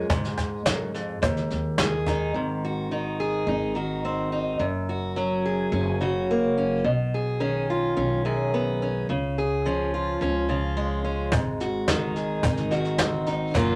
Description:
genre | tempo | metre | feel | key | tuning
acoustic folk duo or small band | 107 BPM | 4/4 | straight | unclear | A4 = 440 Hz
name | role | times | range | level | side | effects
fingerpicked acoustic archtop guitar | accompaniment | 0.0-13.8 s | Eb2 to Ab4 | -27 LUFS | equal | none
upright bass | bass | 0.0-13.8 s | Gb1 to Ab2 | -34 LUFS | equal | none
soft brush drum kit | drums | 0.1-2.1, 11.3-13.7 s | kick drum, snare drum | -31 LUFS | equal | none
cajon | percussion | 0.1-2.2, 11.3-13.7 s | none | -29 LUFS | equal | none
room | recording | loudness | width
wet club reverb, RT60 0.6 s | none | -26 LUFS | mono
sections
0.0-2.4 A section; 2.4-13.8 B section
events
none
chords
0.1 Fm; 1.2 Ebsus4; 2.4 Ab; 4.6 Gb; 6.9 Badd9; 9.1 Db; 11.3 Ab

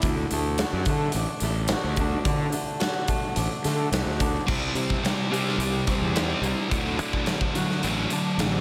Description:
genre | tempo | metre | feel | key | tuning
quiet-loud alternative rock | 108 BPM | 4/4 | straight | unclear | A4 = 440 Hz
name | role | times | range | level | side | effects
fingerpicked swing-style acoustic guitar | arpeggios | 0.0-8.6 s | C3 to G4 | -33 LUFS | equal | digital delay
fuzz fingered electric bass | bass | 0.0-8.6 s | A1 to D3 | -30 LUFS | equal | overdrive
big rock drum kit | drums | 0.0-8.5 s | crash cymbal, hi-hat, kick drum, snare drum | -30 LUFS | equal | none
thick fuzz guitar | riff | 4.5-8.6 s | C3 to C4 | -28 LUFS | equal | distortion
room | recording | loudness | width
light reverb, studio reverb | none | -25 LUFS | mono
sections
0.0-4.5 A section; 4.5-8.6 B section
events
none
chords
0.0 D; 4.5 C; 6.7 D

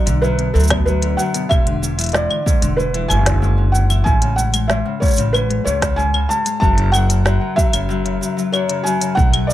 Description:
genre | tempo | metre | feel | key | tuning
folktronica | 94 BPM | 4/4 | straight | unclear | A4 = 445 Hz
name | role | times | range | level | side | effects
felt-muted upright piano | melody | 0.0-9.5 s | A4 to A5 | -21 LUFS | right 1 dB | digital delay
Celtic harp | arpeggios | 0.0-9.5 s | F#2 to G#3 | -22 LUFS | left 4 dB | none
upright bass | bass | 0.1-9.5 s | E1 to D2 | -18 LUFS | right 1 dB | none
organic electronic drum kit | drums | 0.1-9.5 s | claves, hi-hat, shaker, snare drum | -21 LUFS | equal | studio reverb
electronic kick drum | drums | 0.7-9.3 s | none | -17 LUFS | right 1 dB | studio reverb
room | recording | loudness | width
little or no reverb | none | -14 LUFS | side -13 dB against mid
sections
0.0-9.5 A section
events
none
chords
0.0 Bm; 1.5 E7; 4.1 Amaj7; 6.6 F#5

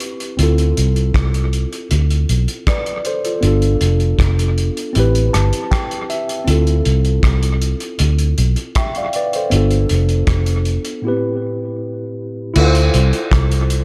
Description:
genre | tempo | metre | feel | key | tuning
lovers rock reggae | 79 BPM | 4/4 | straight | D dorian | A4 = 440 Hz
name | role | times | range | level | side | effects
mellow tine electric piano | accompaniment | 0.0-13.8 s | A2 to A5 | -23 LUFS | equal | tape echo
cloth-damped thuddy drum kit | drums | 0.0-13.8 s | crash cymbal, hi-hat, kick drum, rim click | -23 LUFS | equal | gated reverb
vintage muted fingered electric bass | bass | 0.4-13.8 s | F1 to D2 | -17 LUFS | equal | none
room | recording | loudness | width
small room ambience | none | -17 LUFS | mono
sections
0.0-12.6 A section; 12.6-13.8 B section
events
tine electric piano fill 5.0-6.5; break 11.0-12.6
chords
0.4 Dm7; 3.4 G9; 5.0 Am7; 6.5 Dm7; 9.5 G9; 11.0 Am7; 12.6 Dm7

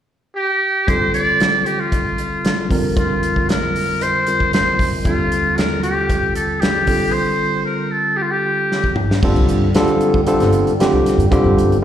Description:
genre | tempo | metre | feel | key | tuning
electric jazz fusion | 115 BPM | 4/4 | straight | G minor | A4 = 436 Hz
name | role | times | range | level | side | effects
trumpet with metal mute | melody | 0.4-9.0 s | F4 to D5 | -18 LUFS | equal | plate reverb, slapback echo, tape echo
barky tine electric piano | accompaniment | 0.9-11.8 s | Eb2 to Bb4 | -18 LUFS | equal | medium stereo tremolo, plate reverb, slapback echo
modern studio drum kit | drums | 0.9-11.8 s | crash cymbal, hi-hat, kick drum, snare drum, toms | -20 LUFS | equal | none
upright bass | bass | 9.2-11.8 s | G1 to G2 | -17 LUFS | equal | none
room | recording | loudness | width
light reverb | live gig heard through the venue's PA, recital hall reverb | -14 LUFS | side -10 dB against mid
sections
0.9-9.2 A section; 9.2-11.8 B section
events
drum fill 8.7-9.2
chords
0.0 N.C.; 0.9 F69; 2.7 Bbadd9/F; 5.1 Ebmaj9#11; 6.9 Gsus2; 9.2 G9sus4

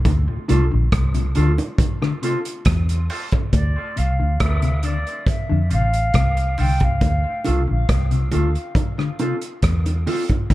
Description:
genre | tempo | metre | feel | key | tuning
dub reggae | 69 BPM | 4/4 | straight | D minor | A4 = 440 Hz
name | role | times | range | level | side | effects
vintage muted fingered electric bass | bass | 0.0-10.5 s | A1 to F2 | -19 LUFS | equal | none
mellow electric guitar | arpeggios | 0.1-10.5 s | A2 to D3 | -27 LUFS | left 4 dB | tremolo
vintage drum kit | drums | 0.1-10.5 s | hi-hat, kick drum, rim click | -21 LUFS | equal | none
bongos | percussion | 0.1-10.5 s | none | -31 LUFS | right 3 dB | high-pass filter on perc, dub echo
mellow tonewheel organ | accompaniment | 0.3-3.4 s | D2 to F4 | -32 LUFS | left 2 dB | none
mellow electric guitar | accompaniment | 0.5-10.2 s | C4 to A4 | -28 LUFS | right 2 dB | high-pass filter, dub echo
silver concert flute | melody | 3.5-7.7 s | D5 to G5 | -27 LUFS | equal | dub echo
room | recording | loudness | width
light reverb, small room ambience | dark, warm production | -17 LUFS | side -16 dB against mid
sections
0.0-3.5 A section; 3.5-10.5 B section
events
break 0.0-3.5; filter sweep 0.1-7.0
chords
0.1 Dm; 1.8 F; 3.5 Dm; 5.3 F; 7.0 Dm; 8.8 F

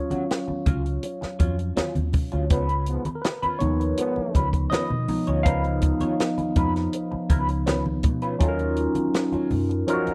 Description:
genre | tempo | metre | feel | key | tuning
lush 1970s-style soul | 81 BPM | 4/4 | straight | Eb minor | A4 = 440 Hz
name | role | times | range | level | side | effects
barky tine electric piano | accompaniment | 0.0-10.1 s | F3 to F5 | -28 LUFS | equal | phaser
electric guitar through a small old amp | riff | 0.1-9.9 s | Gb3 to Db5 | -32 LUFS | equal | wah, spring reverb
vintage muted fingered electric bass | bass | 0.1-10.1 s | Db2 to Cb3 | -29 LUFS | equal | none
compact cocktail drum kit | drums | 0.1-10.1 s | hi-hat, kick drum, snare drum | -26 LUFS | equal | none
congas | percussion | 0.1-10.1 s | none | -36 LUFS | equal | none
clear trombone section | stabs | 2.5-4.5 s | Ab2 to Cb4 | -32 LUFS | equal | none
room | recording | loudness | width
little or no reverb | dry, close 1970s-style studio recording | -24 LUFS | mono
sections
0.0-8.4 A section; 8.4-10.1 B section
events
tine electric piano solo 0.0-8.4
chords
0.0 Ebm9 (rootless); 2.5 Db7; 8.4 Ebm9

